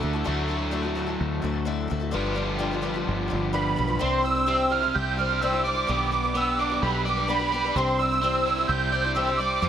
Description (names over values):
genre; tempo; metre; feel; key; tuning
folk rock and heartland rock; 128 BPM; 4/4; straight; G major; A4 = 440 Hz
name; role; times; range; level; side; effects
picked twelve-string acoustic guitar; accompaniment; 0.0-9.7 s; C3 to C5; -30 LUFS; left 5 dB; none
crunchy overdriven guitar; riff; 0.0-9.7 s; G2 to D5; -28 LUFS; equal; none
fingered electric bass; bass; 0.0-9.7 s; G1 to F2; -30 LUFS; equal; none
musette accordion; melody; 3.5-9.7 s; B5 to G6; -25 LUFS; right 4 dB; digital delay
room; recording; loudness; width
light reverb; none; -22 LUFS; side -9 dB against mid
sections
0.3-4.0 A section; 4.0-9.7 B section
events
none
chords
0.3 Dadd9; 2.1 G7; 4.0 Cadd9; 5.9 G/B; 7.8 Cadd9